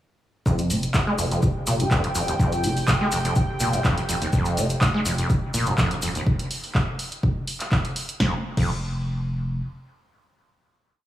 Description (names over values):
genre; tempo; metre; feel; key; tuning
acid house; 124 BPM; 4/4; swing 54% on 16ths; unclear; A4 = 440 Hz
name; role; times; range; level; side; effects
dark analog pad; sustained chords; 1.3-6.3 s; G5; -32 LUFS; right 1 dB; chorus, sidechain pumping
overdriven acid bass; riff; 0.5-8.7 s; F1 to Ab3; -25 LUFS; equal; lush chorus, dub echo
electronic kick drum; drums; 0.5-8.7 s; none; -23 LUFS; equal; none
maracas; percussion; 0.5-6.2 s; none; -34 LUFS; left 5 dB; none
punchy analog drum machine; drums; 0.6-8.7 s; crash cymbal, handclaps, hi-hat, snare drum; -28 LUFS; right 1 dB; none
saturated sub bass; bass; 0.7-9.6 s; Eb1 to F1; -28 LUFS; equal; sidechain pumping
room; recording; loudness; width
light reverb, digital ambience; studio reverb; -21 LUFS; side -13 dB against mid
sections
0.5-8.2 groove; 8.2-11.1 final note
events
filter sweep on acid bass 0.5-6.3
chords
none